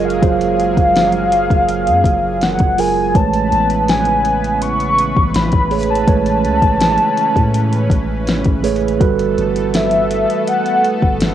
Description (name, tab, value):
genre	contemporary R&B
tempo	82 BPM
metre	4/4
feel	straight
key	unclear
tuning	A4 = 441 Hz
part	warm velvety synth lead	melody	0.0-11.2 s	E5 to C#6	-16 LUFS	left 1 dB	chorus, cassette tape, analog delay
part	mellow tine electric piano	accompaniment	0.0-11.3 s	F#3 to C#5	-19 LUFS	right 8 dB	fast stereo tremolo, cassette tape
part	lush unison pad	sustained chords	0.0-11.3 s	C#3 to B4	-24 LUFS	left 1 dB	chorus, sidechain pumping, cassette tape
part	soft 808-style bass	bass	0.0-11.3 s	F#1 to A2	-22 LUFS	left 1 dB	none
part	smooth R&B drum kit	drums	0.1-11.3 s	hi-hat, kick drum, snare drum	-17 LUFS	left 1 dB	cassette tape
room	little or no reverb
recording	home recording on cassette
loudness	-12 LUFS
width	side -11 dB against mid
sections	0.0-11.3 A section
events	none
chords	0.0 F#maj9; 3.2 Amaj9; 9.0 Gmaj9